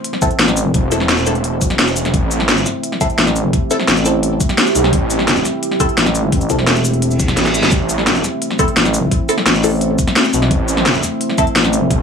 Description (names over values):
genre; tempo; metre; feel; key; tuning
dark technical drum and bass; 172 BPM; 4/4; straight; A minor; A4 = 440 Hz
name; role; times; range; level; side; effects
deep dark ambient pad; sustained chords; 0.0-12.0 s; A3 to C5; -20 LUFS; right 1 dB; chorus, built-in reverb, sidechain pumping
drum and bass drum kit; drums; 0.0-12.0 s; cabasa, hi-hat, snare drum; -16 LUFS; left 1 dB; none
filtered dub chord stab; stabs; 0.2-11.4 s; C4 to A4; -21 LUFS; left 1 dB; phaser, dub echo
electronic kick drum; drums; 0.2-12.0 s; none; -17 LUFS; equal; overdrive
growling FM bass; bass; 0.4-0.7, 3.2-11.9 s; E1 to A1; -17 LUFS; left 1 dB; none
wide detuned saw bass; bass; 0.7-2.6, 4.8-8.2, 10.3-12.0 s; E1 to B1; -18 LUFS; equal; chorus, tube saturation, sidechain pumping
reverse cymbal; sound effects; 7.2-7.7 s; none; -22 LUFS; right 2 dB; none
room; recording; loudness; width
light reverb; none; -13 LUFS; side -6 dB against mid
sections
0.0-12.0 A section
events
reverse cymbal 7.2-7.7; kick drops out 7.4-7.7; drum fill 7.4-7.7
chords
0.0 Am